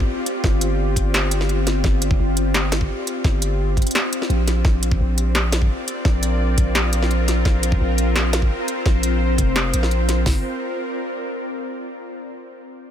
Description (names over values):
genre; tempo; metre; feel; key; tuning
half-time drum and bass; 171 BPM; 4/4; half-time; G minor; A4 = 439 Hz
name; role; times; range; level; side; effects
bowed-like drone; sustained chords; 0.0-11.6 s; C4 to D5; -24 LUFS; left 2 dB; built-in reverb, sidechain pumping
long sustained 808-style bass; bass; 0.0-10.4 s; F1 to Bb1; -20 LUFS; equal; none
trap drum kit; drums; 0.0-10.3 s; hi-hat, kick drum, snare drum; -19 LUFS; equal; none
industrial drum kit; drums; 0.3-10.2 s; hi-hat, snare drum; -24 LUFS; equal; none
room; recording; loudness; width
digital ambience; none; -17 LUFS; side -10 dB against mid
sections
0.0-10.3 A section; 10.3-11.7 B section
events
none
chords
0.0 G5; 4.6 Bb; 10.3 Gm (rootless)